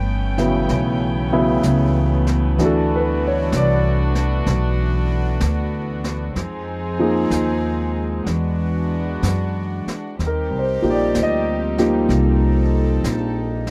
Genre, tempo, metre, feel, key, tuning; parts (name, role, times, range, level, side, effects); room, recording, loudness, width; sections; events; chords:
jazz ballad; 63 BPM; 4/4; swing 66% on 8ths; A4 = 440 Hz
warm chamber string section; sustained chords; 0.0-13.7 s; E3 to G5; -28 LUFS; equal
upright bass; bass; 0.0-13.7 s; G1 to F#2; -23 LUFS; equal
warm concert grand piano; accompaniment; 0.4-13.7 s; C#3 to Eb5; -23 LUFS; equal
jazz brush drum kit; drums; 0.4-13.7 s; brushed snare drum, hi-hat, snare drum; -33 LUFS; equal
little or no reverb; dry, close 1970s-style studio recording; -20 LUFS; mono
0.0-13.7 A section
0.0 A9; 2.6 D69; 6.4 Fm7; 8.3 E9; 10.2 Eb6